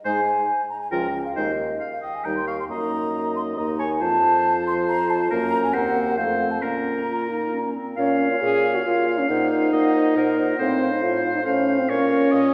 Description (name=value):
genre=quick classical-period movement for wind quintet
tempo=138 BPM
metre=3/4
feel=rubato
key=Bb minor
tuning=A4 = 440 Hz
part: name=mellow hollow concert flute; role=melody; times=0.1-12.5 s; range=Eb5 to Db6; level=-28 LUFS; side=equal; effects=none
part: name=clear oboe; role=second line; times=0.1-12.5 s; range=Bb4 to G5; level=-30 LUFS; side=equal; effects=none
part: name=mellow clarinet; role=accompaniment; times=0.1-12.5 s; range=C4 to Db5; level=-32 LUFS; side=equal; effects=none
part: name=warm French horn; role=accompaniment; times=0.1-12.5 s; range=F3 to Ab4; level=-26 LUFS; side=equal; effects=none
part: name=mellow bassoon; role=bass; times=0.1-12.5 s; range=Db2 to Bb2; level=-29 LUFS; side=equal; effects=none
room=wet concert hall reverb, RT60 2.3 s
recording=recorded in a church or concert hall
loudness=-22 LUFS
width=mono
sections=0.0-8.0 A section; 8.0-12.5 B section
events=none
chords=0.1 Ab5; 0.9 Bbm/Db; 1.4 Ab5/Eb; 2.3 Eb; 2.7 Ebm/Gb; 4.0 F; 5.3 Gb; 5.7 Cm7b5/Eb; 6.2 F; 6.6 Bbm; 9.3 Cm7b5/Bb; 10.6 F/A; 11.9 Bbm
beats=| 0.05 0.48 0.92 | 1.36 1.81 2.26 | 2.70 3.14 3.58 | 4.02 4.46 4.89 | 5.32 5.75 6.18 | 6.62 7.07 7.52 | 7.97 8.41 8.85 | 9.29 9.72 10.16 | 10.59 11.02 11.46 | 11.89 12.32